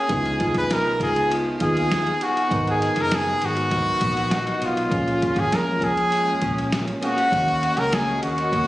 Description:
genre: indie pop, bedroom pop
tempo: 100 BPM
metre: 4/4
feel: straight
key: unclear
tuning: A4 = 440 Hz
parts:
  - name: clear trumpet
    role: melody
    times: 0.0-8.7 s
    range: F4 to Cb5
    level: -22 LUFS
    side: equal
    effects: lush chorus, slapback echo
  - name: electric guitar through a small old amp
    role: accompaniment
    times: 0.0-8.7 s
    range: Ab2 to Ab4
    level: -30 LUFS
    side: left 2 dB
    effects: ensemble chorus, warbly pitch drift
  - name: soft electric-piano-like synth keys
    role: accompaniment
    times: 0.0-8.7 s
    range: Gb3 to F5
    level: -28 LUFS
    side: right 1 dB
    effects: chorus, tremolo
  - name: vintage muted fingered electric bass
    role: bass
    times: 0.1-8.7 s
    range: Gb1 to F2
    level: -29 LUFS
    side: equal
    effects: none
  - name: dusty soul sampler-style drum kit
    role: drums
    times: 0.1-8.7 s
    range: kick drum, ride cymbal, snare drum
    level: -28 LUFS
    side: equal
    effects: none
  - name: warbly tape-like pad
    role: sustained chords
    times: 7.9-8.7 s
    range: Gb4 to Db6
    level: -34 LUFS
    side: left 1 dB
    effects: chorus, built-in reverb, phaser
room: light reverb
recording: recorded on a phone in the room, studio reverb, compression, nothing above 10.4 kHz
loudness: -19 LUFS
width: side -16 dB against mid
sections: 0.0-8.7 A section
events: none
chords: 0.1 Db7; 2.5 Abm7; 4.9 Bbm7; 7.3 Ebm7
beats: | 0.10 0.70 1.30 1.91 | 2.51 3.11 3.71 4.31 | 4.91 5.51 6.12 6.72 | 7.32 7.92 8.52

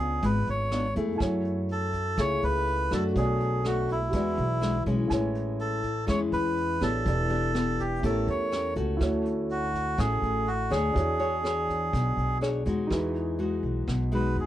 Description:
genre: bossa nova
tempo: 123 BPM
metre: 4/4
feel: straight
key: unclear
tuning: A4 = 442 Hz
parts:
  - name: melodica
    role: melody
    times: 0.0-14.5 s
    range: E4 to C#5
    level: -29 LUFS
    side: right 1 dB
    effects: none
  - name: nylon-string guitar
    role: accompaniment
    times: 0.0-14.5 s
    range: A2 to C#5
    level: -30 LUFS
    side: left 2 dB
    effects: none
  - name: warm grand piano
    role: accompaniment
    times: 0.0-14.5 s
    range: A3 to G#5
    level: -35 LUFS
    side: right 3 dB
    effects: none
  - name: upright bass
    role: bass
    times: 0.0-14.5 s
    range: E1 to F#2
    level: -30 LUFS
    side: equal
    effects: none
  - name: vintage brush drum kit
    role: drums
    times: 0.2-14.5 s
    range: hi-hat, kick drum, rim click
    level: -35 LUFS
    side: equal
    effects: none
room: little or no reverb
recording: none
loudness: -25 LUFS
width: side -12 dB against mid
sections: 0.0-12.9 A section; 12.9-14.5 B section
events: melodica solo 12.9-14.5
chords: 0.0 C#7b9; 1.2 F#m9; 3.2 Bm7; 4.1 E9; 5.1 Amaj7; 7.1 Em7; 8.0 A7b9; 9.0 Dmaj7; 11.0 E13; 12.9 Emaj9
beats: 0.23 0.72 | 1.21 1.69 2.18 2.67 | 3.16 3.64 4.13 4.62 | 5.11 5.59 6.08 6.57 | 7.06 7.54 8.03 8.52 | 9.01 9.49 9.98 10.47 | 10.96 11.44 11.93 12.42 | 12.90 13.39 13.88 14.37

